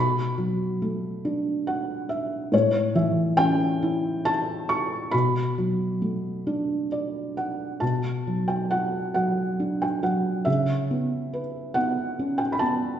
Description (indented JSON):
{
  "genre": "classical, lyrical solo piano",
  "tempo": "46 BPM (dotted quarters)",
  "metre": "6/8",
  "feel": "rubato",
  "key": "B minor",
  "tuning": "A4 = 441 Hz",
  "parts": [
    { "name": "felt-muted upright piano", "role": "solo", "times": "0.0-13.0 s", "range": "A2 to C#6", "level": "-23 LUFS", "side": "equal", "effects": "none" }
  ],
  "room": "wet recital hall reverb, RT60 1.5 s",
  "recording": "heard from further back in the room, nothing above 7.9 kHz",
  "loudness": "-23 LUFS",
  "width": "side -9 dB against mid",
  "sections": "0.0-7.8 A section; 7.8-13.0 B section",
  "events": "felt piano fill 1.3-2.5, 6.5-7.8",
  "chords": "0.0 Bm7; 2.5 A7; 5.1 Bm7; 7.8 Bm; 10.5 C#m7b5",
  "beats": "1.25 | 2.53 3.83 | 5.13 6.46 | 7.82 9.16 | 10.48 11.76"
}